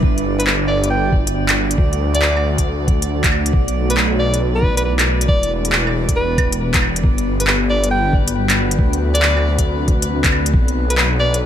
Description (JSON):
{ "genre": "future garage", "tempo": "137 BPM", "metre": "4/4", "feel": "swing 66% on 16ths", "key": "unclear", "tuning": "A4 = 438 Hz", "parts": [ { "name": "deep dark ambient pad", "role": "sustained chords", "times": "0.0-11.5 s", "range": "G3 to G5", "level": "-24 LUFS", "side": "equal", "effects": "chorus, built-in reverb, sidechain pumping" }, { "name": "swelling detuned saw bass", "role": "bass", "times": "0.0-11.5 s", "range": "E1 to D2", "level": "-19 LUFS", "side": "equal", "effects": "sidechain pumping" }, { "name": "electronic kick drum", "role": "drums", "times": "0.0-10.7 s", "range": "none", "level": "-17 LUFS", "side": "equal", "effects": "none" }, { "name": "drifting glass-harmonics texture", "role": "texture", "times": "0.0-11.5 s", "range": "B4 to D5", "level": "-29 LUFS", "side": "equal", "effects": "chorus, built-in reverb" }, { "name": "organic electronic drum kit", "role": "drums", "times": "0.2-11.4 s", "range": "claves, handclaps, hi-hat", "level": "-19 LUFS", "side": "equal", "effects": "overdrive" }, { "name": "clear alto saxophone", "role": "melody", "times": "0.4-11.4 s", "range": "B4 to G5", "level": "-23 LUFS", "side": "equal", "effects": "ping-pong delay" } ], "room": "light reverb", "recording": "none", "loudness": "-14 LUFS", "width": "side -10 dB against mid", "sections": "0.0-11.5 A section", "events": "none", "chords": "0.0 Gmaj7; 1.8 D7; 3.5 B7sus4; 5.3 Em7; 7.0 Gmaj7; 8.8 D7; 10.5 B7sus4" }